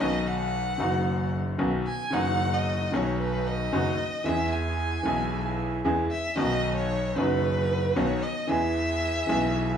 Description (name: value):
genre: tango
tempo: 113 BPM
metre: 4/4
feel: rubato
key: unclear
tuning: A4 = 440 Hz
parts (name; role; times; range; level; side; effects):
- warm violin; second line; 0.0-9.8 s; B4 to G#5; -30 LUFS; equal; slapback echo
- bright upright piano; accompaniment; 0.0-9.8 s; F#1 to G#4; -28 LUFS; left 1 dB; none
- clear double bass; bass; 0.0-9.8 s; F#1 to E2; -30 LUFS; right 1 dB; none
- bandoneon; stabs; 2.1-9.8 s; B3 to G#4; -36 LUFS; right 4 dB; none
room: wet large studio reverb, RT60 1.2 s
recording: heard from further back in the room, studio reverb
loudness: -24 LUFS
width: side -8 dB against mid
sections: 0.0-9.8 A section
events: violin solo 0.0-9.8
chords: 0.0 B; 4.3 E; 6.4 B; 8.5 E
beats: | 0.00 0.53 1.07 1.60 | 2.13 2.67 3.20 3.73 | 4.26 4.79 5.32 5.85 | 6.38 6.90 7.43 7.96 | 8.49 9.03 9.56